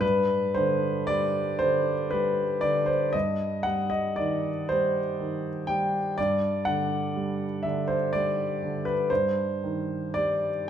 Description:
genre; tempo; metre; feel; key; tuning
classical, romantic nocturne for solo piano; 37-42 BPM (dotted quarters); 12/8; rubato; G major; A4 = 440 Hz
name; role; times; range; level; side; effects
warm grand piano; solo; 0.0-10.7 s; G2 to G5; -24 LUFS; equal; none
room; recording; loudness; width
moderate recital hall reverb, RT60 1.6 s; none; -24 LUFS; side -9 dB against mid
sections
0.0-10.7 A section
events
none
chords
0.0 G5; 3.1 Cm/G; 6.2 G5; 9.1 Cm/G

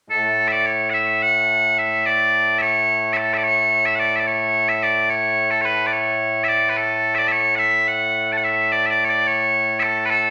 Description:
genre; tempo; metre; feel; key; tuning
scottish traditional, Scottish pipe music; 72 BPM (dotted quarters); 6/8; straight; A major; A4 = 440 Hz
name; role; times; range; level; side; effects
loud bright bagpipes; solo; 0.1-10.3 s; A2 to A5; -19 LUFS; equal; none
room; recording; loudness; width
wet large studio reverb, RT60 1.3 s; none; -19 LUFS; mono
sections
0.1-10.3 A section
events
none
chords
none

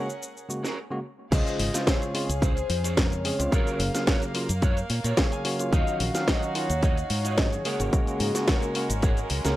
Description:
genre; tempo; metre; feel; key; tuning
nu-disco, nu disco; 109 BPM; 4/4; swing 53% on 16ths; Db major; A4 = 440 Hz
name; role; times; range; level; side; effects
soft octave-layered synth lead; melody; 0.0-9.3 s; Ab4 to F5; -33 LUFS; left 2 dB; chorus, phaser, analog delay
bell-like tine electric piano; accompaniment; 0.0-9.6 s; Db3 to F5; -31 LUFS; equal; sidechain pumping
warm studio violin section; sustained chords; 0.0-9.6 s; Ab3 to Gb5; -36 LUFS; right 2 dB; sidechain pumping
clean electric guitar; riff; 0.0-9.6 s; Db4 to Ab5; -35 LUFS; right 3 dB; ensemble chorus
house drum kit; drums; 0.1-9.6 s; crash cymbal, hi-hat, shaker, snare drum; -29 LUFS; equal; none
fingered electric bass; bass; 1.3-9.5 s; Gb1 to Bb2; -28 LUFS; equal; transformer saturation
electronic kick drum; drums; 1.3-9.1 s; none; -24 LUFS; equal; none
room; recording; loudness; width
little or no reverb; dry, gritty hardware recording; -23 LUFS; side -15 dB against mid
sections
0.0-1.3 A section; 1.3-9.6 B section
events
filter sweep on violin section 0.0-1.3; drop 1.3-9.6; clean electric guitar fill 4.6-5.7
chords
0.0 Ab9sus4; 1.3 Dbmaj7; 3.5 Gbmaj7; 5.7 Ebm9; 7.7 Ab9sus4

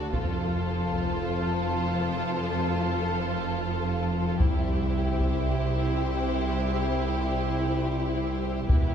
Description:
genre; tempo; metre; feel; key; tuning
cinematic, epic orchestral film score; free time; none; none; unclear; A4 = 439 Hz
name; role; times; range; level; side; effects
warm symphonic violin section; melody; 0.0-8.9 s; B4 to C5; -37 LUFS; left 6 dB; none
warm symphonic violin section; second line; 0.0-8.9 s; G4 to A4; -33 LUFS; left 2 dB; none
rich symphonic viola section; accompaniment; 0.0-8.9 s; E4 to F4; -32 LUFS; equal; none
clear symphonic cello section; bass; 0.0-8.9 s; C2 to F2; -31 LUFS; right 1 dB; none
rich symphonic double bass section; bass; 0.0-8.9 s; E1 to C2; -30 LUFS; right 2 dB; none
taiko ensemble; drums; 0.1-1.2, 4.4-5.4, 8.7-8.9 s; none; -27 LUFS; equal; none
room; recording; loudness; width
wet concert hall reverb, RT60 2.2 s; recorded in a church or concert hall; -25 LUFS; side -8 dB against mid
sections
0.0-8.9 A section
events
build-up 0.0-8.9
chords
0.1 F; 4.4 C

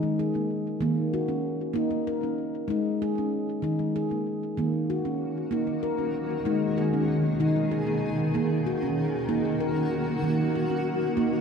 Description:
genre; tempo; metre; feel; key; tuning
world meditative, meditative tuned percussion; 64 BPM (dotted quarters); 6/8; straight; Eb minor; A4 = 442 Hz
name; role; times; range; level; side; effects
handpan; arpeggios; 0.0-11.4 s; Eb3 to Bb4; -26 LUFS; equal; ping-pong delay
granular cloud pad; sustained chords; 5.4-11.4 s; Cb3 to Ab4; -29 LUFS; left 1 dB; built-in reverb
room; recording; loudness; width
wet concert hall reverb, RT60 2.3 s; none; -25 LUFS; side -6 dB against mid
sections
0.0-11.4 A section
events
none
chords
0.0 Ab5; 0.8 Eb5; 2.7 Ab5; 4.6 Ebm; 6.5 Abm; 8.3 Ebm

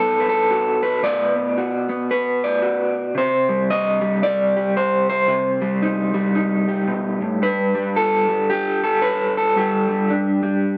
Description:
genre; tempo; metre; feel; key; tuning
folk, solo fingerstyle acoustic guitar; 113 BPM; 4/4; swing 62% on 8ths; unclear; A4 = 441 Hz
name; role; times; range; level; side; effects
electric guitar through a small old amp; solo; 0.0-10.8 s; G2 to Eb5; -20 LUFS; equal; tremolo
room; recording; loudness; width
moderate large studio reverb, RT60 1.4 s; dark, warm production; -20 LUFS; mono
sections
0.0-10.8 A section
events
none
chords
0.0 Bm; 3.2 Cm; 7.4 Gadd9

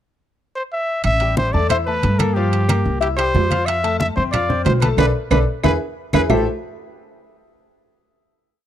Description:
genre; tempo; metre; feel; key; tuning
latin, salsa; 183 BPM; 4/4; straight; A minor; A4 = 440 Hz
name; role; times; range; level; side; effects
warm trumpet; melody; 0.6-6.5 s; G4 to E5; -22 LUFS; equal; none
upright bass; bass; 1.0-6.5 s; A1 to G2; -20 LUFS; equal; none
claves; percussion; 1.0-6.4 s; none; -32 LUFS; right 10 dB; none
congas; percussion; 1.0-6.4 s; none; -23 LUFS; equal; none
timbales; percussion; 1.0-6.4 s; none; -23 LUFS; right 11 dB; none
bright concert grand piano; accompaniment; 1.2-6.5 s; F3 to F6; -23 LUFS; left 8 dB; none
room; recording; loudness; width
small room ambience; dry, close 1970s-style studio recording; -16 LUFS; side -11 dB against mid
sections
0.0-1.0 pickup bar; 1.0-6.3 verse; 6.3-7.6 final chord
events
band accent 5.0-6.3; drum fill 5.8-6.3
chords
0.0 N.C.; 1.0 A5; 2.4 Gm7; 3.0 C; 3.7 Fmaj7; 5.0 Bm7; 5.6 E; 6.3 Am7

